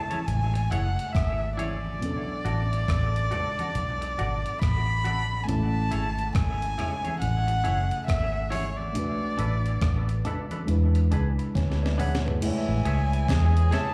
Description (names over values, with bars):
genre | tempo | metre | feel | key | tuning
lovers rock reggae | 69 BPM | 4/4 | swing 61% on 16ths | A major | A4 = 439 Hz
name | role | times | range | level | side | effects
warm erhu | melody | 0.0-13.9 s | C#5 to B5 | -34 LUFS | equal | tape echo, plate reverb, slapback echo
mellow FM electric piano | accompaniment | 0.0-13.9 s | C#3 to B5 | -36 LUFS | equal | chorus, tape echo, plate reverb
semi-hollow electric guitar | stabs | 0.1-13.9 s | D4 to E5 | -40 LUFS | equal | lush chorus, tape echo, plate reverb, slapback echo
crisp 8-bit digital drum machine | drums | 0.1-13.9 s | crash cymbal, hi-hat, kick drum, rim click, snare drum, toms | -33 LUFS | equal | none
congas | percussion | 0.1-13.9 s | none | -38 LUFS | equal | tape echo
vintage muted fingered electric bass | bass | 0.3-13.7 s | F#1 to E2 | -28 LUFS | equal | none
mellow horn section | second line | 12.4-13.9 s | E3 to G#4 | -37 LUFS | equal | plate reverb, slapback echo
room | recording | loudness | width
light reverb | live gig heard through the venue's PA, club reverb | -26 LUFS | mono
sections
0.0-12.4 A section; 12.4-13.9 B section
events
FM electric piano fill 10.7-12.4; drum fill 11.6-12.4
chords
0.0 Amaj7; 2.0 Bm7; 5.5 Amaj7; 9.0 Bm7; 10.7 E7; 12.4 Amaj7